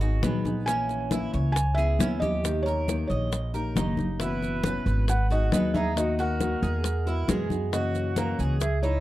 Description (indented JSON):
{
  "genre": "latin, Cuban son and guajira",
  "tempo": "136 BPM",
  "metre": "4/4",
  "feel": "straight",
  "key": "unclear",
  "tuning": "A4 = 440 Hz",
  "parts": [
    { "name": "felt-muted upright piano", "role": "melody", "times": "0.0-9.0 s", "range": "C#5 to G#5", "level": "-31 LUFS", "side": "right 1 dB", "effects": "tape echo" },
    { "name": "nylon-string guitar", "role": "accompaniment", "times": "0.0-9.0 s", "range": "B2 to G#4", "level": "-31 LUFS", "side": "left 4 dB", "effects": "none" },
    { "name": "Cuban tres", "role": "arpeggios", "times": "0.0-9.0 s", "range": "G#3 to D#5", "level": "-35 LUFS", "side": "right 5 dB", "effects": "none" },
    { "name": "upright bass", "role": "bass", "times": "0.0-9.0 s", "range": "F#1 to F#2", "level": "-27 LUFS", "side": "equal", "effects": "none" },
    { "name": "bongos", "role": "percussion", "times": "0.0-9.0 s", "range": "none", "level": "-34 LUFS", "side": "left 6 dB", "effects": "none" },
    { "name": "congas", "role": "percussion", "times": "0.0-9.0 s", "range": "none", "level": "-32 LUFS", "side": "equal", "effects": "none" },
    { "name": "maracas", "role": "percussion", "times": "0.0-9.0 s", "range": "none", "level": "-40 LUFS", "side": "right 16 dB", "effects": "none" },
    { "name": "bright reedy silver concert flute", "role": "second line", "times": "4.2-9.0 s", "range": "E4 to B4", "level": "-35 LUFS", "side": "right 2 dB", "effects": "none" }
  ],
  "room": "little or no reverb",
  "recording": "dry, close 1970s-style studio recording",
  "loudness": "-24 LUFS",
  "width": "side -15 dB against mid",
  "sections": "0.0-9.0 A section",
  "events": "none",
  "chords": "0.0 G#m7; 0.7 A#dim; 1.6 C#m7; 2.4 D#; 4.2 F#7sus4; 5.1 G#m7; 6.0 D#m; 6.9 Eadd9; 7.7 F#7"
}